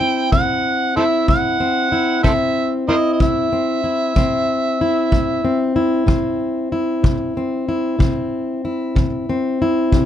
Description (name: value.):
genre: acoustic country blues, solo or duo.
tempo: 62 BPM (dotted quarters).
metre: 12/8.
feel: straight.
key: C major.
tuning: A4 = 440 Hz.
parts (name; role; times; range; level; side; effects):
overdriven harmonica; melody; 0.0-5.8 s; A4 to G5; -19 LUFS; right 2 dB; none.
fingerpicked plugged-in steel-string acoustic guitar; accompaniment; 0.0-10.1 s; C3 to E4; -18 LUFS; left 2 dB; none.
kick drum; drums; 0.3-10.1 s; none; -19 LUFS; equal; none.
room: light reverb.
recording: none.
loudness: -16 LUFS.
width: side -10 dB against mid.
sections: 0.0-10.1 A section.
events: none.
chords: 0.0 C.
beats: 0.32 1.28 2.24 | 3.20 4.16 5.12 6.08 | 7.04 8.00 8.96 9.92.